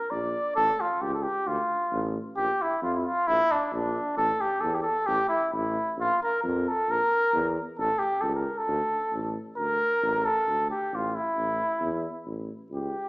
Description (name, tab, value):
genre	balkan folk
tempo	133 BPM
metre	2/4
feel	swing 54% on 16ths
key	D harmonic minor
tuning	A4 = 440 Hz
part	cornet with cup mute	melody	0.0-13.1 s	D4 to D5	-25 LUFS	equal	none
part	dark tuba	bass	0.1-12.9 s	A1 to F2	-33 LUFS	equal	none
room	wet large studio reverb, RT60 1.3 s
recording	band playing live in one room, small speaker sound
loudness	-24 LUFS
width	side -24 dB against mid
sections	0.0-2.4 A section; 2.4-9.6 A section; 9.6-13.1 B section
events	cornet solo 9.6-13.1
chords	0.0 Bb; 0.6 A; 1.5 Dm; 2.4 Bb; 4.2 A5; 6.0 Bb5; 7.8 A; 8.7 D5; 11.4 A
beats	0.11 | 0.56 1.02 | 1.47 1.92 | 2.37 2.82 | 3.27 3.72 | 4.17 4.63 | 5.08 5.53 | 5.98 6.43 | 6.88 7.33 | 7.78 8.23 | 8.68 9.12 | 9.57 10.02 | 10.47 10.92 | 11.37 11.81 | 12.26 12.70